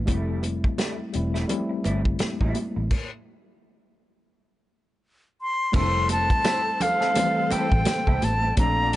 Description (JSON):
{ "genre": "lush 1970s-style soul", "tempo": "85 BPM", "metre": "4/4", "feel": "swing 58% on 16ths", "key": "unclear", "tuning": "A4 = 440 Hz", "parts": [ { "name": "tine electric piano", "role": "accompaniment", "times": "0.0-9.0 s", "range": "E3 to E4", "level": "-29 LUFS", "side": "left 3 dB", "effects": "overdrive, medium stereo tremolo" }, { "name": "vintage muted fingered electric bass", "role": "bass", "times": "0.0-9.0 s", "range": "E1 to C2", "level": "-26 LUFS", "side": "equal", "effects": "none" }, { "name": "electric guitar through a small old amp", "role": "riff", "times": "0.1-8.9 s", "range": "G3 to A4", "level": "-35 LUFS", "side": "right 3 dB", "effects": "analog chorus" }, { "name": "warm soul drum kit", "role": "drums", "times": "0.1-9.0 s", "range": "crash cymbal, hi-hat, kick drum, snare drum", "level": "-25 LUFS", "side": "equal", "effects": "none" }, { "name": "congas", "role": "percussion", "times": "0.1-9.0 s", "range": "none", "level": "-33 LUFS", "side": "right 3 dB", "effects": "none" }, { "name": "silver concert flute", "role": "melody", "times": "5.4-9.0 s", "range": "F5 to C6", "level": "-23 LUFS", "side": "equal", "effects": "analog delay" }, { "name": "tambourine", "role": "percussion", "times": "5.7-9.0 s", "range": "none", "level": "-44 LUFS", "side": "left 4 dB", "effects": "none" }, { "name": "warm studio string section", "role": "sustained chords", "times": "5.8-9.0 s", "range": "D4 to D5", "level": "-34 LUFS", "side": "equal", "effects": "none" } ], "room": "little or no reverb", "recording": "nothing above 10.8 kHz", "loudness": "-21 LUFS", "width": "side -15 dB against mid", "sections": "0.0-5.7 A section; 5.7-9.0 B section", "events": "stop 2.9-5.7", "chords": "0.1 Fmaj9; 2.9 N.C.; 5.7 Fmaj7" }